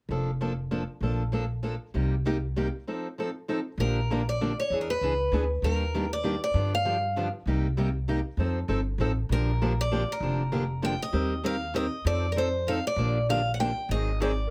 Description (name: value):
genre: acoustic string swing (jazz manouche)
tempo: 196 BPM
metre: 3/4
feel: swing 59% on 8ths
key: Bb major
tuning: A4 = 440 Hz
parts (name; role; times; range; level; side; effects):
- picked steel-string acoustic guitar; accompaniment; 0.1-14.3 s; C3 to Bb4; -33 LUFS; equal; none
- upright bass; bass; 0.1-14.5 s; F1 to G2; -31 LUFS; equal; none
- picked steel-string acoustic guitar; melody; 3.8-7.3, 9.3-14.5 s; Bb4 to G5; -32 LUFS; equal; none
room: moderate club reverb, RT60 0.6 s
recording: none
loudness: -28 LUFS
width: mono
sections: 0.1-3.8 A section; 3.8-11.1 B section; 11.1-14.5 C section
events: break 2.9-3.8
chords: 0.1 Bbmaj7/F; 1.9 Cm7; 2.9 F7; 3.8 Bb6; 4.7 E7; 5.6 Ebmaj7; 6.5 G7; 7.5 Cm7; 8.4 F7; 9.3 Bb6; 11.1 Eb6; 12.1 F7; 13.0 Bb6; 13.9 Ab7#11